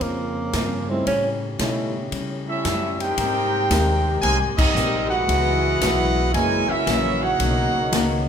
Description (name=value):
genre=jazz, big band swing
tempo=114 BPM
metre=4/4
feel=swing 67% on 8ths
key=unclear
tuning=A4 = 440 Hz
part: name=mellow tenor saxophone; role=melody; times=0.0-1.3 s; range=Bb3 to C#4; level=-26 LUFS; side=right 2 dB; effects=none
part: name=picked old ladder-braced acoustic guitar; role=accompaniment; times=0.0-8.3 s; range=Gb2 to Bb4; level=-29 LUFS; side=left 4 dB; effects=none
part: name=mellow trombone section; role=sustained chords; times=0.0-8.3 s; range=B2 to G4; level=-30 LUFS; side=left 1 dB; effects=none
part: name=upright bass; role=bass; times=0.0-8.3 s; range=Gb1 to C#3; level=-26 LUFS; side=equal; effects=none
part: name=swinging big-band drum kit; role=drums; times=0.0-8.1 s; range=crash cymbal, hi-hat, kick drum, ride cymbal, snare drum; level=-27 LUFS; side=equal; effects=none
part: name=dark grand piano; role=accompaniment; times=0.9-1.9 s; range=G3 to Fb4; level=-29 LUFS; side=equal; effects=none
part: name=clear trumpet section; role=melody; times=2.5-8.3 s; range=C4 to Ab5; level=-23 LUFS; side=equal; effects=none
part: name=brilliant trombone section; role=second line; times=2.5-8.3 s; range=C3 to G4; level=-25 LUFS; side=right 3 dB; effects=none
room=wet recital hall reverb, RT60 1.7 s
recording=recorded in a church or concert hall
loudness=-19 LUFS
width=side -8 dB against mid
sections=0.0-3.2 A section; 3.2-8.3 B section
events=tenor saxophone solo 0.0-3.2; band accent 4.5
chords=0.0 Dbmaj9; 1.1 A7#11; 3.2 Abmaj9; 5.3 Dbm11; 6.3 Gb7; 7.4 Bmaj9